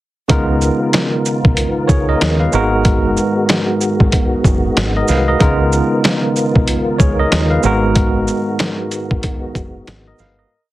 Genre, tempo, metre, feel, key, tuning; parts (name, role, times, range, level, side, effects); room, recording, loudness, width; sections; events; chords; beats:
hip hop, boom-bap hip-hop; 94 BPM; 4/4; swing 60% on 16ths; G# dorian; A4 = 440 Hz
barky tine electric piano; accompaniment; 0.3-10.7 s; G#2 to E#5; -17 LUFS; right 1 dB; medium stereo tremolo, cassette tape, high-pass filter, low-pass filter
tonewheel organ; sustained chords; 0.3-10.5 s; D#3 to A#4; -22 LUFS; left 1 dB; chorus vibrato, slow rotary speaker, high-pass filter, low-pass filter
deep dub fingered electric bass; bass; 0.3-10.4 s; F#1 to D#2; -18 LUFS; equal
trip hop sampler-style drum kit; drums; 0.3-10.4 s; hi-hat, kick drum, shaker, snare drum; -16 LUFS; equal; overdrive
little or no reverb; heavily compressed radio sound, multiband compression; -12 LUFS; side -16 dB against mid
0.3-10.5 hook
fade-out 8.0-10.5
0.3 C#13; 2.5 G#m7; 5.4 C#13; 7.6 G#m7
| 0.30 0.94 1.58 2.21 | 2.85 3.49 4.13 4.77 | 5.41 6.04 6.68 7.32 | 7.96 8.60 9.23 9.87